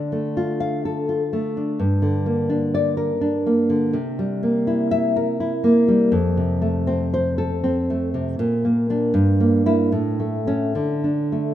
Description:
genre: romantic piece for solo classical guitar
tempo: 69-84 BPM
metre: 3/4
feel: rubato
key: D minor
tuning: A4 = 440 Hz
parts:
  - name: nylon-string guitar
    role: solo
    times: 0.0-11.5 s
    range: F2 to F5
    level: -18 LUFS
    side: equal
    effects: none
room: moderate lush hall reverb, RT60 2.8 s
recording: rough home demo mix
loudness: -18 LUFS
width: side -12 dB against mid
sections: 0.0-11.5 A section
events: none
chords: 0.0 Dm; 1.8 Gm; 4.0 C7; 6.1 F; 8.4 Bb; 9.1 Edim/G; 9.9 A; 10.7 D5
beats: 0.36 1.08 | 1.80 2.52 3.24 | 3.96 4.68 5.40 | 6.13 6.87 7.63 | 8.38 9.14 9.92 | 10.75

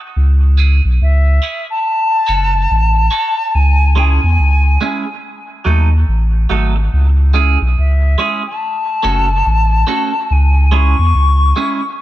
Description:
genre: dub reggae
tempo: 71 BPM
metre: 4/4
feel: swing 62% on 16ths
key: C# minor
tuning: A4 = 440 Hz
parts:
  - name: clean electric guitar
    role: accompaniment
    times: 0.0-11.8 s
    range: F#3 to A4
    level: -21 LUFS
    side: right 6 dB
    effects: phaser, high-pass filter, dub echo
  - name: warm sub bass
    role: bass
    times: 0.2-11.5 s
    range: F#1 to E2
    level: -11 LUFS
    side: equal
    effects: none
  - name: silver concert flute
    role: melody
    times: 1.0-12.0 s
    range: E5 to C#6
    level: -17 LUFS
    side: left 2 dB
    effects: dub echo
room: light reverb, studio ambience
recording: none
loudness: -11 LUFS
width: side -14 dB against mid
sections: 0.0-12.0 A section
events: none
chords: 0.2 C#m; 1.9 F#m; 3.5 C#m; 5.2 D#dim; 6.9 C#m; 8.6 F#m; 10.3 C#m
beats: | 0.16 1.01 1.85 2.70 | 3.54 4.39 5.23 6.08 | 6.92 7.76 8.61 9.45 | 10.30 11.14 11.99

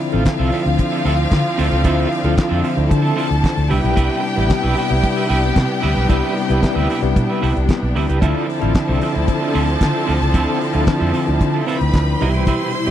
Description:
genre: disco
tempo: 113 BPM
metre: 4/4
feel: straight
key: D dorian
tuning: A4 = 437 Hz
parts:
  - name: rich studio violin section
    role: second line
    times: 0.0-12.9 s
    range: F4 to C6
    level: -24 LUFS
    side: left 1 dB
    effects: none
  - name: electric guitar at the edge of break-up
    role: accompaniment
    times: 0.0-12.9 s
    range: C4 to G5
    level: -24 LUFS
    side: right 6 dB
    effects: tremolo
  - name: mellow tine electric piano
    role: accompaniment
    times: 0.0-12.9 s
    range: B2 to F4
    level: -22 LUFS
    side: left 2 dB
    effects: medium stereo tremolo
  - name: clear studio string section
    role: sustained chords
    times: 0.0-12.9 s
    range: C3 to E4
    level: -24 LUFS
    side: left 1 dB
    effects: none
  - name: damped 70s drum kit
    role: drums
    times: 0.0-12.9 s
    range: handclaps, hi-hat, kick drum, snare drum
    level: -16 LUFS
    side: equal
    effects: none
  - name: vintage muted fingered electric bass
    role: bass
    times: 0.1-12.9 s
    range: A1 to D3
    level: -19 LUFS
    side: equal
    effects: none
room: small room ambience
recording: dry, close 1970s-style studio recording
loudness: -15 LUFS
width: side -11 dB against mid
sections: 0.0-12.9 A section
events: none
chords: 0.0 Dm9; 3.7 Cmaj7; 8.2 Dm9; 12.2 Cmaj7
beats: 0.26 0.79 1.32 | 1.85 2.38 2.91 3.44 | 3.97 4.50 5.03 5.56 | 6.09 6.63 7.16 7.69 | 8.22 8.75 9.28 9.81 | 10.35 10.88 11.41 11.94 | 12.47

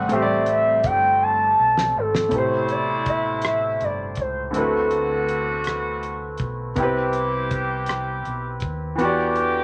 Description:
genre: slow six-eight R&B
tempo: 54 BPM (dotted quarters)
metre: 6/8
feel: straight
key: A dorian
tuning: A4 = 436 Hz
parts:
  - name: gliding portamento lead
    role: melody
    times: 0.0-6.4 s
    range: A4 to A5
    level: -24 LUFS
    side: equal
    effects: chorus
  - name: warm grand piano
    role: accompaniment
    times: 0.0-9.6 s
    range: A2 to D5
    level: -27 LUFS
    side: equal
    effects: none
  - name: hollow soft pad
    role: sustained chords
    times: 0.0-2.3 s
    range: G3 to C4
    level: -36 LUFS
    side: equal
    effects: ensemble chorus
  - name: deep dub fingered electric bass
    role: bass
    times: 0.0-9.6 s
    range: G1 to E2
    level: -34 LUFS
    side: equal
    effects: none
  - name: damped 70s drum kit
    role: drums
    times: 0.1-9.5 s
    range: hi-hat, kick drum, rim click, snare drum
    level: -30 LUFS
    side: equal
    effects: none
  - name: warm horn section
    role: stabs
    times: 2.3-9.6 s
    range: B2 to G4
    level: -29 LUFS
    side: equal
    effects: none
room: moderate studio ambience, RT60 0.5 s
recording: none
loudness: -22 LUFS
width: mono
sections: 0.0-2.3 A section; 2.3-9.6 B section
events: drum fill 1.2-2.3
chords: 0.0 Am7; 2.3 Am9; 4.5 D13; 6.8 Cmaj7; 9.0 Em9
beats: | 0.10 1.21 | 2.32 3.43 | 4.54 5.65 | 6.76 7.87 | 8.99

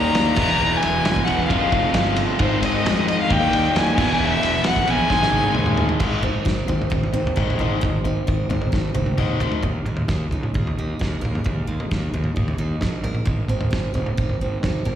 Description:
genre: quiet-loud alternative rock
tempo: 132 BPM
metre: 4/4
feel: straight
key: Ab major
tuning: A4 = 440 Hz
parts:
  - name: dark violin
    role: melody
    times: 0.0-5.8 s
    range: C5 to Bb5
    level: -22 LUFS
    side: left 2 dB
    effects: slapback echo, analog delay
  - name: overdriven electric guitar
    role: riff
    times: 0.0-9.6 s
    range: Ab2 to F4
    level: -25 LUFS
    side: left 11 dB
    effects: spring reverb, slapback echo
  - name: overdriven electric guitar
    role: riff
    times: 0.0-6.0 s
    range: E2 to Eb4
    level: -23 LUFS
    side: right 7 dB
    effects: slapback echo
  - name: fuzz fingered electric bass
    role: bass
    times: 0.0-15.0 s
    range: E1 to F2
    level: -25 LUFS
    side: equal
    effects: overdrive
  - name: loose indie drum kit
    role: drums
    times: 0.1-15.0 s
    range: crash cymbal, kick drum, ride cymbal, snare drum, toms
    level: -23 LUFS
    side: equal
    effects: none
  - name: picked steel-string acoustic guitar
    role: arpeggios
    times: 6.0-15.0 s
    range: Eb3 to Bb4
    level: -29 LUFS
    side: right 4 dB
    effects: none
room: small room ambience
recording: live gig heard through the venue's PA, recital hall reverb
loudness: -18 LUFS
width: side -10 dB against mid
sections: 0.0-6.0 A section; 6.0-9.6 B section; 9.6-15.0 C section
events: drum fill 5.1-6.0, 8.7-9.6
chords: 0.4 E; 1.5 Fm; 2.4 Ab; 3.3 Eb; 4.0 E; 5.1 Ab; 6.0 Abadd9; 9.6 Ebsus4; 13.3 Ab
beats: 0.15 | 0.60 1.05 1.50 1.95 | 2.40 2.85 3.30 3.75 | 4.20 4.65 5.10 5.55 | 6.00 6.46 6.91 7.36 | 7.82 8.27 8.72 9.18 | 9.63 10.09 10.54 11.00 | 11.46 11.91 12.37 12.82 | 13.28 13.73 14.19 14.64

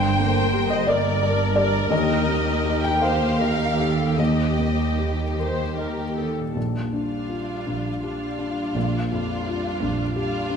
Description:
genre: cinematic, emotional film score for orchestra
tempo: 50-58 BPM (dotted quarters)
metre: 6/8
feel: rubato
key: Bb major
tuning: A4 = 440 Hz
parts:
  - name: warm symphonic violin section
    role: melody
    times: 0.0-6.3 s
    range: G4 to Bb4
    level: -33 LUFS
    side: left 4 dB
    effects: none
  - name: warm symphonic violin section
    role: second line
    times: 0.0-10.6 s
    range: F4 to G5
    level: -28 LUFS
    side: left 1 dB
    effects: none
  - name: felt-muted upright piano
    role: accompaniment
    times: 0.0-10.6 s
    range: Bb1 to G5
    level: -25 LUFS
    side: left 2 dB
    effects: none
  - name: rich symphonic viola section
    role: accompaniment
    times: 0.0-10.6 s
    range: G3 to C5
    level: -30 LUFS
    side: left 1 dB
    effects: none
  - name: concert harp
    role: arpeggios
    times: 0.0-10.4 s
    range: G2 to Eb5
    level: -33 LUFS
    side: left 6 dB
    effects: none
  - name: rich symphonic double bass section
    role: bass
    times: 0.0-10.6 s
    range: G1 to Eb2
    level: -27 LUFS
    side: right 4 dB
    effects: none
  - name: warm symphonic cello section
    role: bass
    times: 0.0-10.6 s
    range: Eb2 to Bb2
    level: -29 LUFS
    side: right 4 dB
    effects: none
room: wet recital hall reverb, RT60 1.4 s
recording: none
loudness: -20 LUFS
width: side -6 dB against mid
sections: 0.0-6.6 A section; 6.6-10.6 B section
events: none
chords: 0.0 Gm; 1.9 Eb; 6.6 Bb6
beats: 0.88 | 1.92 3.02 | 4.19 5.38 | 6.56 7.67 | 8.76 9.82

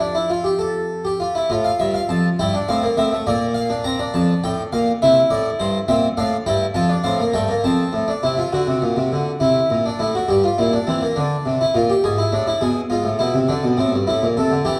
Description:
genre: classical, baroque-style 3-part fugue for harpsichord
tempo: 68 BPM (dotted quarters)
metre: 12/8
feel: straight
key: F major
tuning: A4 = 439 Hz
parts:
  - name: harpsichord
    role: solo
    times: 0.0-14.8 s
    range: F2 to Bb5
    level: -19 LUFS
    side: equal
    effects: none
room: wet recital hall reverb, RT60 1.6 s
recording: dark, warm production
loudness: -19 LUFS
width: mono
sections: 0.0-1.5 A section; 1.5-8.5 B section; 8.5-14.8 A section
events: none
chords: 0.0 F; 3.3 Bb; 5.0 C7; 6.7 F; 8.5 D7; 10.3 Gm; 12.0 E7/G#; 13.8 Am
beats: 0.60 | 1.50 2.39 3.26 4.14 | 5.01 5.88 6.75 7.62 | 8.51 9.40 10.28 11.16 | 12.03 12.90 13.78 14.65

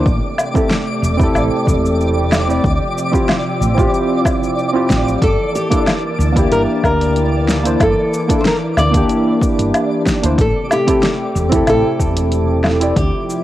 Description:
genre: sunset chillout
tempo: 93 BPM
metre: 4/4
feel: swing 53% on 16ths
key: G dorian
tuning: A4 = 440 Hz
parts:
  - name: soft electric-piano-like synth keys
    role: accompaniment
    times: 0.0-13.0 s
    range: Bb3 to D5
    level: -18 LUFS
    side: right 1 dB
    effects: chorus, auto-pan, analog delay
  - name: lush unison pad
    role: sustained chords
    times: 0.0-13.4 s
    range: C3 to A5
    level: -23 LUFS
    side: equal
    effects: chorus
  - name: woody fretless electric bass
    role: bass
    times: 0.0-13.1 s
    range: E1 to D2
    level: -18 LUFS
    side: equal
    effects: tube saturation, lush chorus
  - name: twinkling granular texture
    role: texture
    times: 0.0-13.4 s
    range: D5 to D6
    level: -25 LUFS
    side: right 1 dB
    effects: built-in reverb
  - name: deep house drum kit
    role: drums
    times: 0.1-13.4 s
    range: cabasa, hi-hat, snare drum, woodblock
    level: -20 LUFS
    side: equal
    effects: overdrive, cassette tape
  - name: electronic kick drum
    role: drums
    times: 0.1-13.1 s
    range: none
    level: -18 LUFS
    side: equal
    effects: overdrive, cassette tape
  - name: nylon-string guitar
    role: melody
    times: 5.2-13.4 s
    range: G4 to D5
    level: -19 LUFS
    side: left 1 dB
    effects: cassette tape, analog delay
room: light reverb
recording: home recording on cassette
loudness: -13 LUFS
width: side -14 dB against mid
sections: 0.0-13.4 A section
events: none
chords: 0.1 Am7; 2.6 Dm11; 5.2 Gm69; 10.4 Am7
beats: | 0.06 0.71 1.35 2.00 | 2.64 3.29 3.93 4.58 | 5.22 5.87 6.51 7.16 | 7.80 8.45 9.09 9.74 | 10.38 11.03 11.68 12.32 | 12.96

